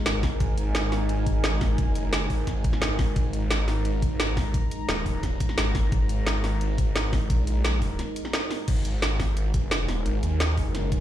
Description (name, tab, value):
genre	dark technical drum and bass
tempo	174 BPM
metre	4/4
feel	straight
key	unclear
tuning	A4 = 440 Hz
part	dark analog pad	sustained chords	0.0-11.0 s	G#3 to A#5	-32 LUFS	right 1 dB	chorus, sidechain pumping
part	snarling distorted saw bass	bass	0.1-11.0 s	D#1 to D#2	-26 LUFS	equal	distortion, overdrive, sidechain pumping
part	drum and bass drum kit	drums	0.1-11.0 s	crash cymbal, hi-hat, snare drum	-29 LUFS	equal	overdrive
part	electronic kick drum	drums	0.2-11.0 s	none	-26 LUFS	equal	overdrive
room	light reverb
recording	played on a big sound system in a bare room, large studio reverb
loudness	-23 LUFS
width	side -12 dB against mid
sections	0.0-8.7 A section; 8.7-11.0 A section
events	drop 0.0-8.7, 8.7-11.0; break 8.0-8.7; band accent 8.3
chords	0.0 G#5